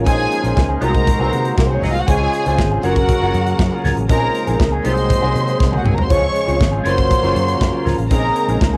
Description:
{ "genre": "disco", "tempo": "119 BPM", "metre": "4/4", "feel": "straight", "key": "unclear", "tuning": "A4 = 440 Hz", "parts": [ { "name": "clear grand piano", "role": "accompaniment", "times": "0.0-8.8 s", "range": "F3 to C5", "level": "-26 LUFS", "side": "equal", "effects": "none" }, { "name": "semi-hollow electric guitar", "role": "accompaniment", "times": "0.0-8.8 s", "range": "C4 to Bb4", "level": "-28 LUFS", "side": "equal", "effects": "wah" }, { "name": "bright tonewheel organ", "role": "sustained chords", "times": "0.0-8.8 s", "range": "C3 to F5", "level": "-29 LUFS", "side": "equal", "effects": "none" }, { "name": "vintage muted fingered electric bass", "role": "bass", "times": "0.0-8.8 s", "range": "Gb1 to C3", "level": "-23 LUFS", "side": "equal", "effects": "none" }, { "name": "dark studio string section", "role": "second line", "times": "0.1-8.6 s", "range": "Bb3 to Db6", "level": "-23 LUFS", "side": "equal", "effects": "none" }, { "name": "mellow horn section", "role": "stabs", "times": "0.1-8.6 s", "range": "F3 to Eb5", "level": "-28 LUFS", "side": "equal", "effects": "none" }, { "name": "modern studio drum kit", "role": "drums", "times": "0.1-8.7 s", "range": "hi-hat, kick drum, snare drum, toms", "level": "-21 LUFS", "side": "equal", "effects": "cassette tape" }, { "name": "congas", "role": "percussion", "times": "0.2-8.8 s", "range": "none", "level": "-30 LUFS", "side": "equal", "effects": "none" } ], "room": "light reverb, studio reverb", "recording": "home recording on cassette", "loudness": "-17 LUFS", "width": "mono", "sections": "0.0-8.8 A section", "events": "drum fill 5.6-6.1", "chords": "0.1 Bbm11; 0.8 Ab7/C; 2.1 Dbmaj7; 2.8 Gbmaj7; 4.1 Bbm11; 4.8 Ab7/C; 6.1 Dbmaj7; 6.9 Gbmaj7; 8.1 Bbm11" }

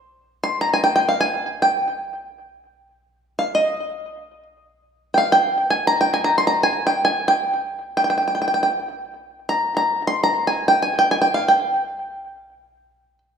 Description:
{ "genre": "Turkish makam ensemble", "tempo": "free time", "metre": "none", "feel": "none", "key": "unclear", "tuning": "A4 = 441 Hz", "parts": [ { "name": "bluegrass banjo", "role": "solo", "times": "0.4-13.2 s", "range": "Eb5 to C6", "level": "-17 LUFS", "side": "equal", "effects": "tape echo" } ], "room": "wet recital hall reverb, RT60 1.3 s", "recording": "dark, warm production, faint mains hum", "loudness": "-17 LUFS", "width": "side -7 dB against mid", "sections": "0.1-13.4 A section", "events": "none", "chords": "none" }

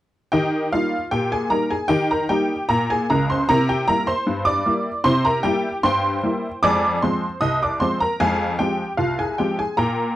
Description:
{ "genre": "ragtime piano", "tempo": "76 BPM", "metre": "2/4", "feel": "straight", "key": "Eb major", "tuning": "A4 = 440 Hz", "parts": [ { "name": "honky-tonk upright piano", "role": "solo", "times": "0.3-10.2 s", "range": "C2 to Eb6", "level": "-18 LUFS", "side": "equal", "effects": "none" } ], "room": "light reverb", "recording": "dry, close 1970s-style studio recording", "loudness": "-18 LUFS", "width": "side -14 dB against mid", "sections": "0.3-10.2 A section", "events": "none", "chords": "0.3 Eb; 3.5 C7; 6.6 Fm" }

